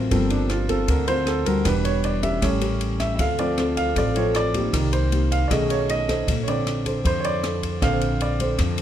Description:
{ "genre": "bossa nova", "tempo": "156 BPM", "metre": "4/4", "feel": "straight", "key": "Bb major", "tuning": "A4 = 441 Hz", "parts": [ { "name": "nylon-string guitar", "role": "accompaniment", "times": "0.0-8.8 s", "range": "A2 to C5", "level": "-27 LUFS", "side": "left 3 dB", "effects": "none" }, { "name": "warm baby grand piano", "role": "accompaniment", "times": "0.0-8.8 s", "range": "D3 to F5", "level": "-24 LUFS", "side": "right 2 dB", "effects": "none" }, { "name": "upright bass", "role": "bass", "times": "0.0-8.8 s", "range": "E1 to F2", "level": "-25 LUFS", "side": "equal", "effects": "none" }, { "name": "open jazz drum kit", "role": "drums", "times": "0.1-8.8 s", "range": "kick drum, ride cymbal, rim click", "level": "-28 LUFS", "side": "left 1 dB", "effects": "none" } ], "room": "light reverb", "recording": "none", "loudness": "-20 LUFS", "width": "side -10 dB against mid", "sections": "0.0-8.8 A section", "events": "grand piano solo 0.0-8.8", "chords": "0.1 Gm11; 1.7 Em9; 2.4 A7b9; 3.2 Dm7; 4.7 Cm7; 5.5 B13; 6.3 Bbmaj9", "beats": "| 0.11 0.50 0.88 1.27 | 1.65 2.04 2.42 2.81 | 3.19 3.58 3.96 4.35 | 4.74 5.12 5.51 5.89 | 6.28 6.66 7.05 7.43 | 7.82 8.20 8.59" }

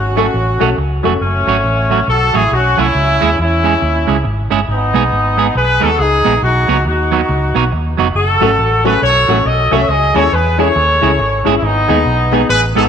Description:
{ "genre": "ska", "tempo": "138 BPM", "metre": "4/4", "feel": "swing 62% on 8ths", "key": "F# dorian", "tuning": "A4 = 441 Hz", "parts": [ { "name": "warm horn section", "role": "melody", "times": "0.0-12.8 s", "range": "A3 to E5", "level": "-14 LUFS", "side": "left 1 dB", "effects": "none" }, { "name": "vintage muted fingered electric bass", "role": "bass", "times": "0.0-12.9 s", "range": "E#1 to E2", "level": "-17 LUFS", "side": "equal", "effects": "none" }, { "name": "semi-hollow electric guitar", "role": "accompaniment", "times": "0.2-12.8 s", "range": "F#3 to G#4", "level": "-18 LUFS", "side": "right 10 dB", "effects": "spring reverb" }, { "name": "warm upright piano", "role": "stabs", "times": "0.2-1.1, 8.4-12.9 s", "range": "B3 to A4", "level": "-19 LUFS", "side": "left 9 dB", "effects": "none" } ], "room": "moderate plate reverb, RT60 3.1 s", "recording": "1960s-style stereo with parts hard left and right, lossy compression artefacts", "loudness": "-11 LUFS", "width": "side -7 dB against mid", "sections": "0.0-1.2 A section; 1.2-12.9 A section", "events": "none", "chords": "0.0 F#m; 2.9 C#m; 4.7 G#m; 6.4 B; 8.1 F#m; 9.9 C#m; 11.6 G#m", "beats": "0.33 0.77 | 1.20 1.64 2.07 2.50 | 2.94 3.37 3.81 4.24 | 4.68 5.11 5.54 5.98 | 6.41 6.85 7.28 7.71 | 8.15 8.58 9.02 9.45 | 9.88 10.32 10.75 11.19 | 11.62 12.05 12.49" }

